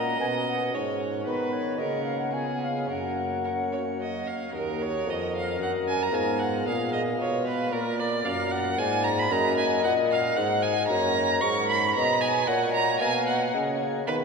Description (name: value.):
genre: classical, baroque-style sonata movement with continuo.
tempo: 113 BPM.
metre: 3/4.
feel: straight.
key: F# major, Eb minor from 4.5 s, F# major from 10.9 s.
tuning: A4 = 442 Hz.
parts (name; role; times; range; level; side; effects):
concert flute; melody; 0.0-14.2 s; F4 to A#5; -30 LUFS; left 4 dB; none.
rich violin; second line; 0.0-14.2 s; G#4 to C#6; -28 LUFS; right 4 dB; none.
pipe organ, sparkling flutes; accompaniment; 0.0-14.2 s; Eb2 to F5; -32 LUFS; left 2 dB; none.
mellow bassoon; bass; 0.0-14.2 s; Eb2 to D#3; -30 LUFS; right 1 dB; none.
room: wet church reverb, RT60 3.6 s.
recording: dark, warm production.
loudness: -24 LUFS.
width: side -4 dB against mid.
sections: 0.0-4.5 A section; 4.5-14.2 A section.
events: none.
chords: 0.0 F#/A#; 1.3 B/D#; 1.8 F#/C#; 2.3 C#7; 2.9 F#; 4.5 Ebm; 6.1 Fdim/Ab; 7.7 Bb; 9.3 Ebm/Gb; 10.9 F#; 12.5 F#/A#.